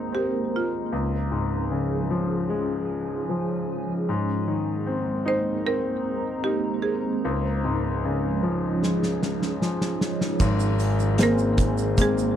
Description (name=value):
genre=pop ballad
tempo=76 BPM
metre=4/4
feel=straight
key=Ab major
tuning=A4 = 440 Hz
part: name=buzzing marimba with hard mallets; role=melody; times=0.0-12.4 s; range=Ab3 to C5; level=-27 LUFS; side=right 3 dB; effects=none
part: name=clear concert grand piano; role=accompaniment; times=0.0-12.4 s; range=Ab1 to Eb4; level=-25 LUFS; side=left 2 dB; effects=none
part: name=shimmering ambient pad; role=sustained chords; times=0.0-12.4 s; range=Eb3 to Bb4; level=-28 LUFS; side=right 3 dB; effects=chorus, built-in reverb, phaser
part: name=loose indie drum kit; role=drums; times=8.8-12.2 s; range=crash cymbal, hi-hat, kick drum, snare drum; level=-26 LUFS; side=equal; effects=none
part: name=tube shaker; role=percussion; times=10.4-12.4 s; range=none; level=-41 LUFS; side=right 21 dB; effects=none
room=little or no reverb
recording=none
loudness=-22 LUFS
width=side -10 dB against mid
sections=0.0-10.4 A section; 10.4-12.4 B section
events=drum fill 8.8-10.4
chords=0.0 Abadd9; 0.9 Dbadd9; 4.1 Abadd9; 7.2 Dbadd9; 10.4 Abadd9